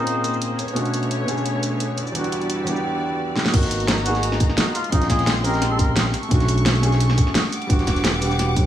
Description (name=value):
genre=liquid drum and bass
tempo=173 BPM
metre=4/4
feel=swing 53% on 16ths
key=unclear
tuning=A4 = 437 Hz
part: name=trumpet with cup mute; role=melody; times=0.0-0.4, 4.1-6.0 s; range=D#4 to A#4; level=-28 LUFS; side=right 1 dB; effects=digital delay
part: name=felt-muted upright piano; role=accompaniment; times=0.0-8.7 s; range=E2 to A#4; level=-24 LUFS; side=equal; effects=dub echo
part: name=rich symphonic string section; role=sustained chords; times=0.0-8.7 s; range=D3 to D6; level=-28 LUFS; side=left 1 dB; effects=sidechain pumping
part: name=pop drum kit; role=drums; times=0.1-8.6 s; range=crash cymbal, hi-hat, shaker, snare drum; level=-24 LUFS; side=equal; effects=none
part: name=smooth gliding synth bass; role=bass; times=3.5-8.7 s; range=E1 to B1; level=-22 LUFS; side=equal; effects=none
part: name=dusty soul sampler-style drum kit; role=drums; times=3.5-8.7 s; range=hi-hat, snare drum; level=-31 LUFS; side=right 1 dB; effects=overdrive, high-pass filter on hats, high-pass filter on snare
part: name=electronic kick drum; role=drums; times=3.5-8.6 s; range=none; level=-20 LUFS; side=equal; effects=none
room=moderate recital hall reverb, RT60 1.7 s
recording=none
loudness=-18 LUFS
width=side -11 dB against mid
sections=0.0-3.5 A section; 3.5-8.7 B section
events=drum fill 3.4; drop 3.5-8.7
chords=0.0 A#m9; 0.6 Bm9; 2.0 Em9; 3.5 G#m9; 4.8 A#m9; 6.1 Bm9; 7.5 Em9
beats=0.07 0.41 | 0.76 1.11 1.46 1.80 | 2.15 2.50 2.84 3.19 | 3.54 3.88 4.23 4.58 | 4.92 5.27 5.62 5.96 | 6.31 6.66 7.00 7.35 | 7.70 8.04 8.39